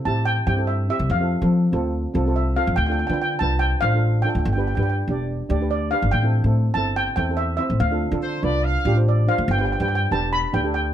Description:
calypso; 143 BPM; 4/4; straight; A4 = 441 Hz
steel pan; melody; 0.1-10.9 s; D5 to B5; -24 LUFS; equal
steel pan; accompaniment; 0.1-10.8 s; C4 to D5; -26 LUFS; right 3 dB
upright bass; bass; 0.1-10.9 s; E1 to F3; -21 LUFS; left 1 dB
clear horn section; second line; 8.2-9.0 s; C5 to F5; -26 LUFS; equal
light reverb; close, detailed microphones; -19 LUFS; side -10 dB against mid
0.0-10.9 A section
0.0 C; 1.1 F; 2.8 Dm; 4.5 G; 6.1 Am; 7.8 Dm; 9.5 Gadd9
0.26 0.68 | 1.10 1.52 1.94 2.36 | 2.78 3.20 3.62 4.03 | 4.45 4.87 5.29 5.71 | 6.13 6.55 6.97 7.39 | 7.81 8.23 8.65 9.07 | 9.48 9.90 10.32 10.74

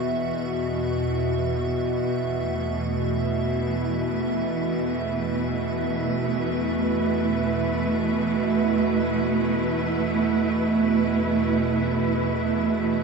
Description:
dark ambient drone; free time; A4 = 440 Hz
rich symphonic cello section; sustained chords; 0.0-13.0 s; E3 to B4; -25 LUFS; right 3 dB
bowed-like drone; drone; 0.0-13.0 s; E2 to B2; -25 LUFS; right 1 dB; built-in reverb
icy glass pad; texture; 0.0-13.0 s; E5; -34 LUFS; right 6 dB; chorus, built-in reverb
wet huge ambient reverb, RT60 7.6 s; -22 LUFS; side -4 dB against mid
0.0-13.0 A section
0.0 E5; 1.1 A5/E
free time

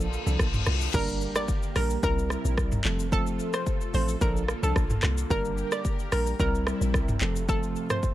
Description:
afrobeats; 110 BPM; 4/4; straight; F major; A4 = 440 Hz
bell-like tine electric piano; accompaniment; 0.0-8.0 s; F3 to Bb4; -33 LUFS; right 4 dB; fast stereo tremolo
lush unison pad; sustained chords; 0.0-8.1 s; C3 to Bb4; -37 LUFS; equal; chorus, phaser
deep log drum bass; bass; 0.0-7.8 s; F1 to C2; -28 LUFS; equal
afro-pop drum kit; drums; 0.0-8.1 s; crash cymbal, handclaps, hi-hat, kick drum, rim click, shaker, toms; -28 LUFS; equal; vintage 12-bit sampler grit
reverse cymbal and impact; sound effects; 0.0-3.1 s; -35 LUFS; left 4 dB
hollow square pluck; melody; 0.9-8.0 s; A4 to D5; -32 LUFS; equal; chorus, tape echo
little or no reverb; -24 LUFS; side -14 dB against mid
0.9-8.1 A section
reverse cymbal 0.0-0.9; impact 0.9-3.1
0.0 Bbmaj7; 0.9 Gm; 2.0 C7; 2.8 F; 4.2 Bbmaj7; 5.3 Gm; 6.4 C7; 7.2 F
0.40 | 0.94 1.49 2.03 2.58 | 3.12 3.67 4.21 4.76 | 5.30 5.85 6.39 6.94 | 7.49 8.03

